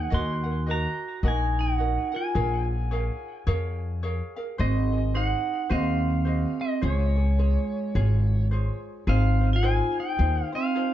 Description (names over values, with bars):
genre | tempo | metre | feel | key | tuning
Hawaiian | 107 BPM | 4/4 | swing 60% on 8ths | Db major | A4 = 440 Hz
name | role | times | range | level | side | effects
pedal steel guitar | melody | 0.0-10.9 s | Db5 to C6 | -30 LUFS | left 1 dB | tape echo
vibraphone with hard mallets | second line | 0.0-10.9 s | Ab3 to Gb4 | -30 LUFS | right 5 dB | tape echo
ukulele | accompaniment | 0.0-10.9 s | Eb4 to Gb5 | -35 LUFS | left 1 dB | none
upright bass | bass | 0.0-10.4 s | Ab1 to F2 | -24 LUFS | equal | none
room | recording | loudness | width
light reverb | dark, warm production, nothing above 7.9 kHz | -23 LUFS | side -12 dB against mid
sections
0.0-9.1 A section; 9.1-10.9 B section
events
none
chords
0.1 Ebm; 2.4 Bbm7; 4.6 Ab7; 6.8 Dbmaj7; 9.1 Ab6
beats
| 0.12 0.68 1.24 1.80 | 2.36 2.92 3.48 4.04 | 4.59 5.15 5.71 6.27 | 6.83 7.39 7.95 8.51 | 9.07 9.63 10.19 10.75